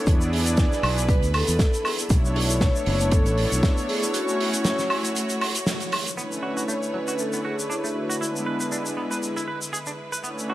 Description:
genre	nu-disco, nu disco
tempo	118 BPM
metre	4/4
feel	swing 56% on 16ths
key	B dorian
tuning	A4 = 441 Hz
part	vibraphone with medium mallets	melody	0.0-9.4 s	E4 to D5	-30 LUFS	left 1 dB	tape echo
part	warm analog pad	accompaniment	0.0-10.5 s	G#3 to D5	-28 LUFS	equal	chorus, slapback echo
part	rich symphonic string section	sustained chords	0.0-10.5 s	D3 to C#5	-32 LUFS	equal	sidechain pumping
part	fingered electric bass	bass	0.1-3.6 s	F#1 to E2	-24 LUFS	equal	none
part	damped 70s drum kit	drums	0.1-10.5 s	hi-hat, shaker, snare drum, woodblock	-27 LUFS	right 1 dB	none
part	electronic kick drum	drums	0.1-3.7 s	none	-21 LUFS	equal	overdrive
part	direct-recorded clean electric guitar	riff	6.2-10.5 s	F#3 to B4	-32 LUFS	right 3 dB	lush chorus, low-pass filter
room	light reverb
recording	none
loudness	-21 LUFS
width	side -15 dB against mid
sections	0.0-6.2 A section; 6.2-10.5 B section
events	break 4.1-6.2; band accent 5.7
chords	0.1 E7; 2.1 Bm11; 4.1 F#m7; 6.2 Bm11; 8.2 E7

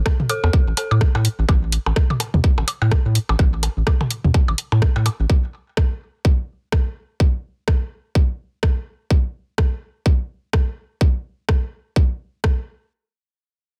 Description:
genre	minimal techno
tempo	126 BPM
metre	4/4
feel	swing 59% on 16ths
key	unclear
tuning	A4 = 442 Hz
part	electronic kick drum	drums	0.1-12.6 s	none	-19 LUFS	equal	none
part	techno drum kit	drums	0.1-12.6 s	hi-hat, rim click	-27 LUFS	equal	overdrive
part	electronic percussion blips and toms	percussion	0.1-5.2 s	none	-26 LUFS	equal	digital delay
part	dark detuned synth bell	riff	0.3-0.8 s	A4	-30 LUFS	equal	chorus, sidechain pumping, low-pass filter, dub echo
part	round analog bass	bass	0.4-5.3 s	A1 to A2	-20 LUFS	equal	sidechain pumping
room	little or no reverb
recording	dense, heavily limited modern master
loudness	-20 LUFS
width	mono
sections	0.0-12.9 A section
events	filter sweep on synth bell 0.0-1.5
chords	0.0 A5

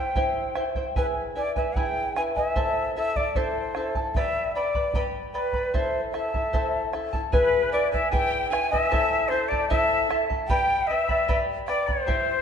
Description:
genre	andean folk, Andean ensemble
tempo	75 BPM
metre	2/4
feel	straight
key	A minor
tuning	A4 = 439 Hz
part	quena	melody	0.0-12.4 s	B4 to G#5	-26 LUFS	left 1 dB	none
part	charango	accompaniment	0.0-12.4 s	E4 to B5	-27 LUFS	equal	none
part	bombo	percussion	0.2-12.3 s	none	-30 LUFS	right 1 dB	none
part	breathy bright quena	second line	7.3-12.4 s	B4 to G#5	-27 LUFS	left 4 dB	none
room	wet scoring stage reverb, RT60 1.6 s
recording	nothing above 10.7 kHz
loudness	-22 LUFS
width	side -7 dB against mid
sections	0.0-7.3 A section; 7.3-12.4 A section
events	none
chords	0.0 C; 1.0 E; 2.6 Am; 4.1 G; 5.7 Am; 7.3 E; 8.9 Am; 10.5 G

